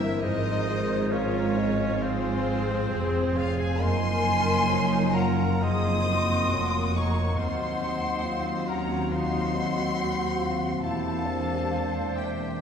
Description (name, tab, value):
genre	classical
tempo	68 BPM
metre	4/4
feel	rubato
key	unclear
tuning	A4 = 441 Hz
part	rich chamber violin section	melody	0.0-12.6 s	C5 to Eb6	-34 LUFS	left 6 dB	none
part	clear oboe	second line	0.0-12.6 s	C4 to Eb5	-37 LUFS	right 1 dB	none
part	hollow flute section	second line	0.0-12.6 s	Ab4 to C6	-33 LUFS	left 2 dB	none
part	warm symphonic violin section	second line	0.0-12.6 s	C5 to Eb6	-37 LUFS	left 3 dB	none
part	dark bassoon	accompaniment	0.0-12.3 s	Ab3 to Gb4	-33 LUFS	right 2 dB	none
part	rich symphonic viola section	accompaniment	0.0-12.6 s	Ab3 to C5	-34 LUFS	right 1 dB	none
part	mellow French horn section	sustained chords	0.0-12.6 s	E3 to C4	-31 LUFS	left 3 dB	none
part	rich symphonic double bass section	bass	0.0-12.6 s	E1 to Eb2	-32 LUFS	right 2 dB	none
part	warm symphonic cello section	bass	0.0-12.6 s	Eb2 to Ab2	-31 LUFS	right 1 dB	none
room	wet concert hall reverb, RT60 2.2 s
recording	heard from further back in the room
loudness	-24 LUFS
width	side -7 dB against mid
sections	0.0-12.6 A section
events	none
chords	0.2 Fm/Ab; 3.8 Gbmaj7; 7.4 Cdim/Eb; 10.8 C7/E